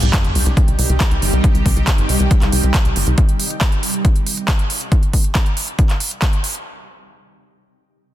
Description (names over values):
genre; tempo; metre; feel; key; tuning
uplifting trance; 138 BPM; 4/4; straight; C minor; A4 = 440 Hz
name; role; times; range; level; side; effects
shimmering ambient pad; sustained chords; 0.0-3.1 s; C3 to G4; -24 LUFS; right 1 dB; chorus, built-in reverb, phaser, sidechain pumping
tight sequencer bass; bass; 0.0-3.2 s; G1 to C2; -17 LUFS; equal; sidechain pumping
big-room dance drum kit; drums; 0.0-6.6 s; handclaps, hi-hat; -22 LUFS; right 2 dB; none
sub drop; sound effects; 0.0-1.4 s; none; -26 LUFS; left 1 dB; none
electronic kick drum; drums; 0.1-6.3 s; none; -15 LUFS; equal; none
room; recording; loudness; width
little or no reverb; dense, heavily limited modern master; -14 LUFS; side -13 dB against mid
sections
0.0-6.7 A section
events
impact 0.0-1.4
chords
0.0 Cm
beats
0.13 0.57 1.00 | 1.44 1.87 2.31 2.74 | 3.18 3.61 4.05 4.48 | 4.92 5.35 5.79 6.22